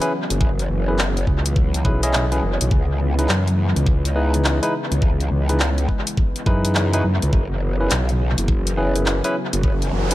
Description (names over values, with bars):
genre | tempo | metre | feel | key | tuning
glitch hop | 104 BPM | 4/4 | swing 64% on 16ths | unclear | A4 = 441 Hz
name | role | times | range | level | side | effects
warm analog pad | sustained chords | 0.0-10.1 s | C#3 to B3 | -28 LUFS | equal | chorus, tremolo, sidechain pumping
barky tine electric piano | stabs | 0.0-10.1 s | C#4 to D#5 | -25 LUFS | equal | sidechain pumping, dub echo
drum and bass drum kit | drums | 0.0-10.1 s | handclaps, hi-hat | -26 LUFS | left 1 dB | dub echo
growl bass | bass | 0.3-10.1 s | F#1 to F#2 | -20 LUFS | equal | chorus, overdrive
electronic kick drum | drums | 0.4-9.8 s | none | -19 LUFS | equal | none
noise sweep | sound effects | 9.7-10.1 s | none | -27 LUFS | right 1 dB | none
room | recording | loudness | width
digital ambience | echo-heavy mix | -17 LUFS | side -16 dB against mid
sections
0.0-10.1 A section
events
noise sweep 9.7-10.1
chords
0.0 F#7sus4; 2.7 C#m7; 7.3 F#7sus4